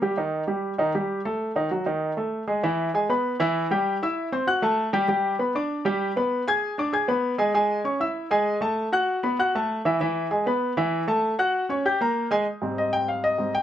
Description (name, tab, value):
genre	jazz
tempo	195 BPM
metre	4/4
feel	straight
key	E major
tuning	A4 = 439 Hz
part	warm grand piano	solo	0.0-13.6 s	Ab2 to G#6	-22 LUFS	equal	none
room	light reverb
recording	none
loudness	-22 LUFS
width	side -10 dB against mid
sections	0.0-2.6 A section; 2.6-12.5 B section; 12.5-13.6 C section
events	grand piano solo 12.5-13.6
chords	0.0 Eb; 1.4 Ebdim; 2.6 E; 3.9 C/G; 4.5 Gsus2; 5.1 G; 6.3 G#dim; 7.5 Amaj7; 8.8 F#m; 9.4 Esus24; 10.0 E; 10.6 Esus4; 11.2 F#m; 11.8 G#sus2; 12.5 Abmaj7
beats	| 0.17 0.48 0.79 1.10 | 1.40 1.71 2.02 2.33 | 2.63 2.94 3.25 3.56 | 3.86 4.17 4.48 4.78 | 5.09 5.40 5.71 6.01 | 6.32 6.63 6.93 7.24 | 7.55 7.86 8.16 8.47 | 8.78 9.09 9.39 9.70 | 10.01 10.31 10.62 10.93 | 11.23 11.54 11.85 12.16 | 12.46 12.77 13.08 13.39